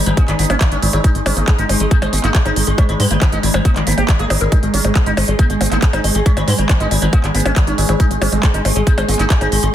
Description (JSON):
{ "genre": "psychedelic trance", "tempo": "138 BPM", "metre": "4/4", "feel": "straight", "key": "G# minor", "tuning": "A4 = 441 Hz", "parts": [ { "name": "overtone-sweeping drone", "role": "sustained chords", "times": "0.0-9.7 s", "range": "G#3 to G#4", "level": "-24 LUFS", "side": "right 1 dB", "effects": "chorus, built-in reverb, sidechain pumping" }, { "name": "woody wave-folded pluck", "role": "riff", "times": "0.0-9.7 s", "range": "G3 to A#4", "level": "-23 LUFS", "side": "moving between left 3 dB and right 3 dB", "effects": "chorus, auto-pan, vintage 12-bit sampler grit, sidechain pumping, tape echo" }, { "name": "tight sequencer bass", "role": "bass", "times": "0.0-9.7 s", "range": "G#1 to G#2", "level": "-18 LUFS", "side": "equal", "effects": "tube saturation" }, { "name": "sitar", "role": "melody", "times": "0.1-9.7 s", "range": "D#3 to G#4", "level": "-21 LUFS", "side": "left 1 dB", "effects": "phaser, vintage 12-bit sampler grit, sidechain pumping, tape echo" }, { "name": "techno drum kit", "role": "drums", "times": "0.1-9.7 s", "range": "handclaps, hi-hat, percussion blips", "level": "-21 LUFS", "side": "equal", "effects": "none" }, { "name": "electronic kick drum", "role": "drums", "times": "0.2-9.4 s", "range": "none", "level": "-12 LUFS", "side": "equal", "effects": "none" } ], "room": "light reverb", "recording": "dense, heavily limited modern master", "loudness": "-12 LUFS", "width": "side -11 dB against mid", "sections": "0.0-9.7 A section", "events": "filter sweep on synth arpeggio sound 0.0-9.7", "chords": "0.0 G#5" }